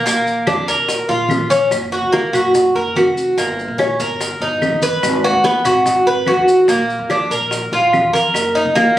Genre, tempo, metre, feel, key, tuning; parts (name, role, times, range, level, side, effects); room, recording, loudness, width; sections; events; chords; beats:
latin, Cuban son and guajira; 145 BPM; 4/4; straight; A4 = 439 Hz
Cuban tres; arpeggios; 0.0-9.0 s; Bb3 to Cb5; -14 LUFS; equal; slapback echo
upright bass; bass; 0.0-9.0 s; F1 to Bb2; -26 LUFS; equal
bongos; percussion; 0.1-9.0 s; -25 LUFS; left 2 dB
congas; percussion; 0.1-9.0 s; -28 LUFS; left 1 dB
maracas; percussion; 0.1-9.0 s; -29 LUFS; left 2 dB
claves; percussion; 0.5-8.6 s; -27 LUFS; left 1 dB
moderate large studio reverb, RT60 0.8 s; recorded on a phone in the room, studio ambience, compression; -13 LUFS; side -13 dB against mid
0.0-1.7 A section; 1.7-9.0 B section
0.1 Bb; 1.7 Gb; 3.4 Eb7/G; 5.0 Abm7; 6.7 Bb; 8.3 Gb6
| 0.06 0.47 0.89 1.30 | 1.72 2.13 2.54 2.96 | 3.37 3.79 4.20 4.62 | 5.03 5.45 5.86 6.28 | 6.69 7.11 7.52 7.94 | 8.35 8.77